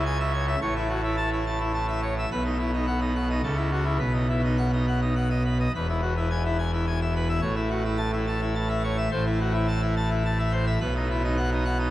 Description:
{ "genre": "classical, organ toccata", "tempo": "106 BPM", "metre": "3/4", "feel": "straight", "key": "unclear", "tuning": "A4 = 440 Hz", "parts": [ { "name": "pipe organ, full organ", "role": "solo", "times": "0.0-11.9 s", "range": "E1 to A5", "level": "-23 LUFS", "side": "equal", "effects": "none" } ], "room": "moderate huge ambient reverb, RT60 7.5 s", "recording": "in a vast, echoing space, vinyl crackle", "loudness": "-23 LUFS", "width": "side -15 dB against mid", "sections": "0.0-5.7 A section; 5.7-11.9 B section", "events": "none", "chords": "0.0 C#m; 0.6 A; 2.3 B; 3.4 A/C#; 4.0 B; 5.7 E; 7.4 A; 9.1 Am; 10.8 B", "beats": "0.04 | 0.60 1.17 1.73 | 2.29 2.86 3.43 | 4.01 4.58 5.16 | 5.73 6.29 6.86 | 7.43 7.99 8.56 | 9.13 9.69 10.25 | 10.82 11.38" }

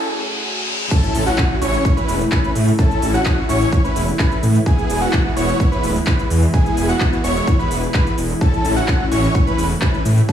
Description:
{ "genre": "EDM, festival progressive house", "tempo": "128 BPM", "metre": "4/4", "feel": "straight", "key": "A major", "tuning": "A4 = 439 Hz", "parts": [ { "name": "lush unison pad", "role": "sustained chords", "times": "0.0-10.3 s", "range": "B2 to G#4", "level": "-26 LUFS", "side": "left 1 dB", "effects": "chorus, sidechain pumping" }, { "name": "riser, reverse cymbal and impact", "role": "sound effects", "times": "0.0-2.8 s", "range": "none", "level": "-24 LUFS", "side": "left 1 dB", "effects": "none" }, { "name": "wide unison lead", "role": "arpeggios", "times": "0.9-10.3 s", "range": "F#5 to C#6", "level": "-25 LUFS", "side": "equal", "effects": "sidechain pumping, digital delay" }, { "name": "supersaw chords", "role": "riff", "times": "0.9-10.3 s", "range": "B3 to C#5", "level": "-22 LUFS", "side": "equal", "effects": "vintage 12-bit sampler grit, sidechain pumping, digital delay" }, { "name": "big-room dance drum kit", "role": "drums", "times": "0.9-10.3 s", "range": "crash cymbal, handclaps, hi-hat, shaker, woodblock", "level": "-26 LUFS", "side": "left 1 dB", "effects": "none" }, { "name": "electronic kick drum", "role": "drums", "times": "0.9-10.3 s", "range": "none", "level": "-17 LUFS", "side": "equal", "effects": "high-pass filter on kick, high-pass filter on room" }, { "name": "wide detuned saw bass", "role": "bass", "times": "1.1-10.2 s", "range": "D1 to A2", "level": "-18 LUFS", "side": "equal", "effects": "chorus, sidechain pumping" } ], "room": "light reverb", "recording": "high-pass filter, studio ambience", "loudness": "-15 LUFS", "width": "side -9 dB against mid", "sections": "0.9-10.3 A section", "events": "break 0.0-0.9; riser 0.0-0.9; reverse cymbal 0.0-0.9; drop 0.9-10.3; impact 0.9-2.8", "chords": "0.0 F#m; 0.9 A; 4.7 E; 8.4 A", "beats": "0.44 | 0.91 1.38 1.85 2.32 | 2.79 3.26 3.73 4.19 | 4.66 5.13 5.60 6.07 | 6.54 7.01 7.47 7.94 | 8.41 8.88 9.35 9.82 | 10.29" }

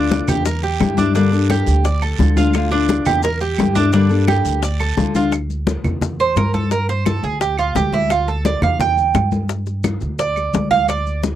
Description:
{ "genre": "latin, Cuban son and guajira", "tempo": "172 BPM", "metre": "4/4", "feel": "straight", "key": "D minor", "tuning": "A4 = 440 Hz", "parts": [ { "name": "nylon-string guitar", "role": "accompaniment", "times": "0.0-5.3 s", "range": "D3 to A4", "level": "-18 LUFS", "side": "left 5 dB", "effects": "none" }, { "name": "Cuban tres", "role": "arpeggios", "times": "0.0-11.2 s", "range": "D4 to G5", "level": "-20 LUFS", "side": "right 6 dB", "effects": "none" }, { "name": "upright bass", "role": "bass", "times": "0.0-11.3 s", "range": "D2 to G2", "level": "-20 LUFS", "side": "right 1 dB", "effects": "none" }, { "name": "bongos", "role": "percussion", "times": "0.1-11.4 s", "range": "none", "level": "-24 LUFS", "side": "left 9 dB", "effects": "none" }, { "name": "congas", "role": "percussion", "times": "0.1-11.4 s", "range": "none", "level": "-22 LUFS", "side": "left 3 dB", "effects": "none" }, { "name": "guiro", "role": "percussion", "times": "0.1-5.3 s", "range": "none", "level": "-34 LUFS", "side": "right 12 dB", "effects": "none" }, { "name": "maracas", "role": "percussion", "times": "0.1-11.4 s", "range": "none", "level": "-36 LUFS", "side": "left 9 dB", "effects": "none" }, { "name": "claves", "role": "percussion", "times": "0.3-11.1 s", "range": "none", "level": "-31 LUFS", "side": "right 7 dB", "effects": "none" } ], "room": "little or no reverb", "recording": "dry, close 1970s-style studio recording", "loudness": "-15 LUFS", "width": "side -11 dB against mid", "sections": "0.0-5.3 A section; 5.3-11.4 B section", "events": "Cuban tres solo 5.3-11.4", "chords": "0.5 Em7b5; 1.1 Gmadd9; 1.8 Dm; 3.2 Em7b5; 3.9 Gmadd9; 4.6 Dm; 5.3 Dsus2; 6.0 Edim; 6.7 G5; 7.4 Dmadd9; 8.8 Em; 9.5 G5; 10.2 Dm", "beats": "0.11 0.46 0.80 | 1.15 1.50 1.85 2.19 | 2.54 2.89 3.24 3.58 | 3.93 4.28 4.63 4.97 | 5.32 5.67 6.02 6.37 | 6.71 7.06 7.41 7.76 | 8.11 8.45 8.80 9.15 | 9.50 9.84 10.19 10.54 | 10.89 11.24" }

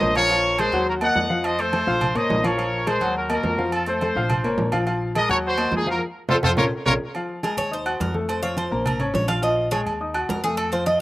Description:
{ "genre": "latin, salsa", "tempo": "210 BPM", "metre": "4/4", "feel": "straight", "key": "Bb minor", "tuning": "A4 = 440 Hz", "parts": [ { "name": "bright trumpet section", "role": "melody", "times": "0.0-6.9 s", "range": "Eb4 to Gb5", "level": "-22 LUFS", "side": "equal", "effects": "slapback echo" }, { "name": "clear grand piano", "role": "accompaniment", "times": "0.0-11.0 s", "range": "F3 to Gb6", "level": "-26 LUFS", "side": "left 2 dB", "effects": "none" }, { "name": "upright bass", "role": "bass", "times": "0.0-11.0 s", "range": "Ab1 to F2", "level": "-30 LUFS", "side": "equal", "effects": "none" }, { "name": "congas", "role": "percussion", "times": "0.0-11.0 s", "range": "none", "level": "-29 LUFS", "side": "equal", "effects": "none" }, { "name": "timbales and agogo bells", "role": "percussion", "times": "0.0-11.0 s", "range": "none", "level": "-28 LUFS", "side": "right 3 dB", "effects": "none" }, { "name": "Cuban tres", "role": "melody", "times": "7.4-11.0 s", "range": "Ab4 to F5", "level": "-25 LUFS", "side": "right 1 dB", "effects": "none" } ], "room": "little or no reverb", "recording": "recorded outdoors, with no room sound", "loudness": "-20 LUFS", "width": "side -17 dB against mid", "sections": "0.0-7.1 A section; 7.1-11.0 B section", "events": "band accent 6.0-7.1; drum fill 6.6-7.1; Cuban tres solo 7.1-11.0", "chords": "0.3 Bbm7; 0.9 Ebm; 1.4 F; 2.0 Bbm; 2.6 Bbm7; 3.2 Ebm; 3.7 F; 4.3 Bbm; 4.9 Bb5; 5.4 Ebm; 6.0 F; 6.6 Bbm; 7.1 Eb9sus4; 7.7 Ebm; 8.3 F; 8.9 Bbm; 9.4 Bb5; 10.0 Ebm", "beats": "0.02 | 0.30 0.59 0.87 1.16 | 1.44 1.73 2.01 2.30 | 2.58 2.87 3.15 3.44 | 3.72 4.01 4.29 4.58 | 4.87 5.15 5.44 5.72 | 6.01 6.29 6.58 6.86 | 7.15 7.43 7.72 8.01 | 8.29 8.58 8.86 9.15 | 9.44 9.72 10.01 10.29 | 10.58 10.86" }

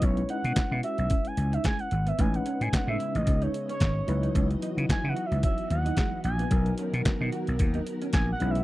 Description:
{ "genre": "early-eighties boogie funk", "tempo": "111 BPM", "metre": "4/4", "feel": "swing 56% on 16ths", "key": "B major", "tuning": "A4 = 440 Hz", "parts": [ { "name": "expressive synth lead", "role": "melody", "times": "0.0-8.6 s", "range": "C#5 to G#5", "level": "-33 LUFS", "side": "right 2 dB", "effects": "chorus" }, { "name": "overdriven tine electric piano", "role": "accompaniment", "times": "0.0-8.6 s", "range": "F#3 to B4", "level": "-34 LUFS", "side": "left 3 dB", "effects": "fast tremolo" }, { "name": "electric guitar at the edge of break-up", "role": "riff", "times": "0.0-8.6 s", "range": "G#3 to F#4", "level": "-38 LUFS", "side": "right 5 dB", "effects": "wide subtle chorus" }, { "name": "vintage slap bass", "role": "bass", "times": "0.0-8.6 s", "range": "G#1 to C#3", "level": "-27 LUFS", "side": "equal", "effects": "none" }, { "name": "detuned 8-bit digital drum machine", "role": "drums", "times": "0.0-8.6 s", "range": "handclaps, hi-hat, kick drum, snare drum", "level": "-27 LUFS", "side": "equal", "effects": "none" }, { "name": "soft string machine", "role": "sustained chords", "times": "2.2-8.6 s", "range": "C#3 to D#5", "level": "-39 LUFS", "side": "left 1 dB", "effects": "ensemble chorus" } ], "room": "little or no reverb", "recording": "dry, close 1970s-style studio recording", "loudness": "-25 LUFS", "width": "side -17 dB against mid", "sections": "0.0-8.6 A section", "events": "analog synth lead solo 0.0-8.6", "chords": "0.0 E6/B; 2.2 Amaj9#11; 4.1 C#m11; 6.5 Bmaj7", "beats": "| 0.03 0.57 1.11 1.65 | 2.19 2.73 3.27 3.81 | 4.35 4.89 5.43 5.97 | 6.51 7.05 7.59 8.14" }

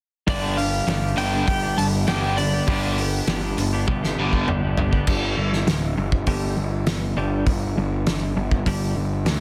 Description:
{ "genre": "quiet-loud alternative rock", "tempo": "100 BPM", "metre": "4/4", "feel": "straight", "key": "unclear", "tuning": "A4 = 436 Hz", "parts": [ { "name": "lightly driven lead guitar", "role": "melody", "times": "0.3-2.9 s", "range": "D5 to A5", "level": "-28 LUFS", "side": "equal", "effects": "none" }, { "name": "twelve-string electric guitar", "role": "arpeggios", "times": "0.3-9.4 s", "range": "G2 to G4", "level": "-30 LUFS", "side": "equal", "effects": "analog delay" }, { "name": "distorted electric guitar", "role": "riff", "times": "0.3-5.0 s", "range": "G2 to G3", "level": "-29 LUFS", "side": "equal", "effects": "overdrive" }, { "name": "fuzz picked electric bass", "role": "bass", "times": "0.3-9.4 s", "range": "D1 to D2", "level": "-27 LUFS", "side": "equal", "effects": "overdrive" }, { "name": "loose indie drum kit", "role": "drums", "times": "0.3-9.4 s", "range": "crash cymbal, hi-hat, kick drum, snare drum, toms", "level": "-27 LUFS", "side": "equal", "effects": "none" } ], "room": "light reverb", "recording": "dense, heavily limited modern master", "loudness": "-22 LUFS", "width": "mono", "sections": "0.3-5.1 A section; 5.1-9.4 B section", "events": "drum fill 3.9-5.1", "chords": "0.3 G; 5.1 G5", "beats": "| 0.28 0.88 1.48 2.08 | 2.68 3.28 3.88 4.48 | 5.08 5.68 6.27 6.87 | 7.47 8.07 8.67 9.27" }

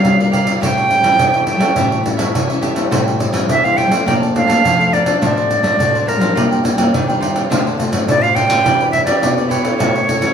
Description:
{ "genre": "samba and choro", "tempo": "104 BPM", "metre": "4/4", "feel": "straight", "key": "unclear", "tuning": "A4 = 440 Hz", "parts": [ { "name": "silver concert flute", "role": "melody", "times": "0.0-10.3 s", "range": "Bb4 to G5", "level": "-15 LUFS", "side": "right 2 dB", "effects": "none" }, { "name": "cavaquinho", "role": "accompaniment", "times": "0.0-10.1 s", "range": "D4 to A5", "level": "-24 LUFS", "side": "right 3 dB", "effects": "none" }, { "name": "nylon-string guitar", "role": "accompaniment", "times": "0.0-10.3 s", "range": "F2 to B4", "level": "-22 LUFS", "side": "left 4 dB", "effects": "none" }, { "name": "nylon-string guitar", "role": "bass", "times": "0.0-10.3 s", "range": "A2 to Bb3", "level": "-20 LUFS", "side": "left 1 dB", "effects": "none" }, { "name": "pandeiro", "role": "percussion", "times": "0.0-10.3 s", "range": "none", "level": "-18 LUFS", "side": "right 1 dB", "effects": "none" } ], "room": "wet stone room reverb, RT60 1.2 s", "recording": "band playing live in one room", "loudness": "-12 LUFS", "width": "side -7 dB against mid", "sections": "0.0-10.3 A section", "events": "none", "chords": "0.0 Gm7; 0.6 A7; 2.9 Am7; 4.1 Bbmaj7; 5.2 Dm7/A; 6.4 Gm7/Bb; 7.5 Dm7; 8.7 Em7; 9.8 A", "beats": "0.05 | 0.62 1.20 1.77 2.35 | 2.92 3.49 4.07 4.64 | 5.22 5.79 6.36 6.94 | 7.51 8.09 8.66 9.23 | 9.81" }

